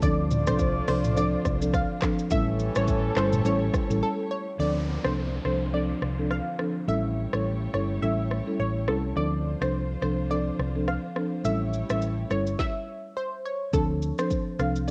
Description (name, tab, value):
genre	afrobeats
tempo	105 BPM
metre	4/4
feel	swing 58% on 16ths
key	D minor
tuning	A4 = 440 Hz
part	analog pluck	melody	0.0-14.9 s	A4 to F5	-34 LUFS	equal	chorus, cassette tape
part	mellow horn section	second line	0.0-4.3 s	E3 to D5	-36 LUFS	equal	none
part	buzzing marimba with soft mallets	accompaniment	0.0-14.9 s	F3 to A4	-31 LUFS	equal	none
part	dark studio string section	sustained chords	0.0-12.6 s	D3 to C#5	-43 LUFS	equal	none
part	hollow-body short-scale fingered electric bass	bass	0.0-14.9 s	G1 to D2	-31 LUFS	equal	none
part	afro-pop drum kit	drums	0.0-14.9 s	handclaps, hi-hat, kick drum, rim click, shaker, snare drum, toms	-32 LUFS	equal	cassette tape
part	downlifter	sound effects	4.6-9.2 s	none	-45 LUFS	equal	none
room	light reverb, digital ambience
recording	home recording on cassette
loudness	-27 LUFS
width	mono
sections	0.0-4.6 A section; 4.6-13.7 B section; 13.7-14.9 C section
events	break 4.0-4.6; stop 12.6-13.7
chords	0.0 Dm7; 2.3 A7; 4.6 Dm7; 6.9 A7; 9.2 Dm7; 11.4 A7; 13.7 Dm7